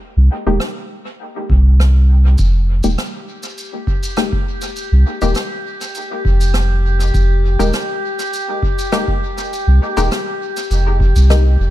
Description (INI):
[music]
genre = ambient dub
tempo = 101 BPM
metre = 4/4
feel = straight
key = F minor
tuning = A4 = 440 Hz
[part]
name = soft dub sub bass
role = bass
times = 0.2-11.7 s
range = Eb1 to C2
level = -11 LUFS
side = equal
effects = none
[part]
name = filtered dub chord stab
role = stabs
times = 0.5-11.4 s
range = Ab3 to G4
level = -22 LUFS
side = left 3 dB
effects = chorus, vintage 12-bit sampler grit, dub echo
[part]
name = rim click and shaker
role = drums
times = 0.6-11.4 s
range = none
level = -27 LUFS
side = right 1 dB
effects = dub echo
[part]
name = electronic kick drum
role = drums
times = 1.5-11.1 s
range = none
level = -19 LUFS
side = equal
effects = none
[part]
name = drifting glass-harmonics texture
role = texture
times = 3.5-11.7 s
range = G4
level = -24 LUFS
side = left 1 dB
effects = chorus, built-in reverb
[sound]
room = small room ambience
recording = echo-heavy mix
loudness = -13 LUFS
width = side -14 dB against mid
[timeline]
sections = 0.0-11.7 A section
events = none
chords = 0.0 Fm11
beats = | 0.01 0.61 1.20 1.80 | 2.39 2.98 3.58 4.17 | 4.77 5.36 5.95 6.55 | 7.14 7.74 8.33 8.93 | 9.52 10.11 10.71 11.30